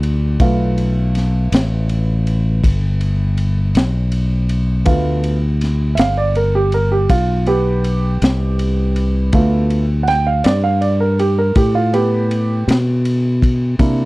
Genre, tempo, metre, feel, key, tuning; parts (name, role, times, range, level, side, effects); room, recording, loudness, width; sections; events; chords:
slow blues; 54 BPM (dotted quarters); 12/8; straight; G mixolydian; A4 = 441 Hz
warm baby grand piano; accompaniment; 0.0-14.1 s; A3 to G5; -19 LUFS; right 3 dB
fingered electric bass; bass; 0.0-14.1 s; G1 to C3; -16 LUFS; left 1 dB
crunchy breakbeat drum kit; drums; 0.0-14.0 s; kick drum, ride cymbal, snare drum; -19 LUFS; left 1 dB
little or no reverb; dry, close 1970s-style studio recording; -14 LUFS; side -20 dB against mid
0.0-14.1 A section
grand piano solo 0.0-14.1
0.0 G9